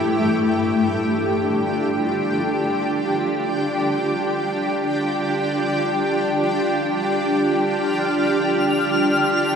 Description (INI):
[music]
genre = ambient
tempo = free time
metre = none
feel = none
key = unclear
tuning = A4 = 440 Hz
[part]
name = granular cloud pad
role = sustained chords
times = 0.0-9.6 s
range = D4 to G5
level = -18 LUFS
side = equal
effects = built-in reverb
[part]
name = felt-muted upright piano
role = arpeggios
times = 0.0-1.0 s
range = none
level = barely audible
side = none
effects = none
[part]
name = twinkling granular texture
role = texture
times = 0.0, 7.9-9.6 s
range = F6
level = -25 LUFS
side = left 2 dB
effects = built-in reverb
[sound]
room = wet huge ambient reverb, RT60 8.5 s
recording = in a vast, echoing space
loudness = -18 LUFS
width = side -6 dB against mid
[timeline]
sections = 0.0-9.6 A section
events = none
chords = 0.0 G5